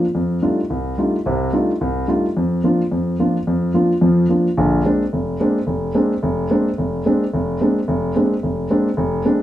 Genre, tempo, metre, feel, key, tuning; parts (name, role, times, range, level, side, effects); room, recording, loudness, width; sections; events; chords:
jazz; 217 BPM; 4/4; swing 60% on 8ths; Bb mixolydian from 4.6 s; A4 = 440 Hz
warm grand piano; solo; 0.0-9.4 s; F1 to F4; -16 LUFS; equal
wet studio reverb, RT60 0.6 s; heard from further back in the room; -16 LUFS; side -12 dB against mid
0.0-4.6 A section; 4.6-9.4 B section
0.1 F13; 2.4 Bb/F; 4.6 Bb9